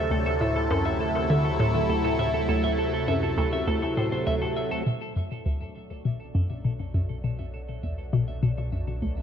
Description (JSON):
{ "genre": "ambient, sequencer-driven space music", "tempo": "101 BPM", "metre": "4/4", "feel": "straight", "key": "unclear", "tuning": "A4 = 440 Hz", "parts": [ { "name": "phased analog pad", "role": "sustained chords", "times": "0.0-9.2 s", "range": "B2 to A4", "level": "-29 LUFS", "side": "equal", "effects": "phaser, chorus" }, { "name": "semi-hollow electric guitar", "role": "arpeggios", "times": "0.0-9.2 s", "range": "A4 to E5", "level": "-32 LUFS", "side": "moving between left 2 dB and right 6 dB", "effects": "auto-pan, ping-pong delay" }, { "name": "fat analog bass", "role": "bass", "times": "0.0-9.2 s", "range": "B1 to D2", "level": "-34 LUFS", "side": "equal", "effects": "none" }, { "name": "hollow square pluck", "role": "riff", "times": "0.1-9.2 s", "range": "D2 to D3", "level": "-27 LUFS", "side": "left 1 dB", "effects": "chorus, ping-pong delay" }, { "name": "pulsing gated texture", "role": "texture", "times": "5.6-9.2 s", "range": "D5", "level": "-49 LUFS", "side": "right 4 dB", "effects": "chorus, built-in reverb" } ], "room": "moderate plate reverb, RT60 2.4 s", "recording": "lossy compression artefacts", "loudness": "-24 LUFS", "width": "side -8 dB against mid", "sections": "0.0-4.9 A section; 4.9-9.2 B section", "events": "none", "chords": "0.0 D7; 4.9 Bm7" }